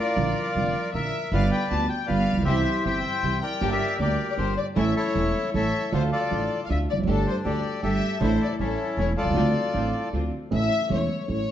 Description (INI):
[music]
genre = tango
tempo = 157 BPM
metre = 3/4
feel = rubato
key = unclear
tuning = A4 = 438 Hz
[part]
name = bandoneon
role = melody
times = 0.0-10.1 s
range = C#4 to A5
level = -27 LUFS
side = left 2 dB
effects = none
[part]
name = warm studio violin section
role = second line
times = 0.0-11.5 s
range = A4 to A5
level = -31 LUFS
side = left 5 dB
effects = none
[part]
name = dark upright piano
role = accompaniment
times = 0.2-11.4 s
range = E1 to A4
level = -26 LUFS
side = right 3 dB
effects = none
[part]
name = upright bass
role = bass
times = 0.2-11.4 s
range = E1 to D2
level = -29 LUFS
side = equal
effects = none
[part]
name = bright symphonic string section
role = stabs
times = 1.3-10.3 s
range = A3 to G4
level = -36 LUFS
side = equal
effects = none
[sound]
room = wet large studio reverb, RT60 1.5 s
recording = dark, warm production, nothing above 8.0 kHz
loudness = -22 LUFS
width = side -11 dB against mid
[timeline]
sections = 0.0-10.5 A section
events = none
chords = 0.2 Bb; 1.3 G7; 2.5 C; 3.6 Gm; 4.8 A; 5.9 Dm; 7.1 Gsus2; 8.2 Asus4; 8.6 A; 9.4 Dm7; 10.5 A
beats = | 0.16 0.55 0.93 | 1.32 1.70 2.09 | 2.47 2.85 3.23 | 3.62 4.00 4.38 | 4.76 5.15 5.53 | 5.92 6.30 6.69 | 7.07 7.45 7.83 | 8.21 8.60 8.98 | 9.36 9.74 10.13 | 10.52 10.90 11.29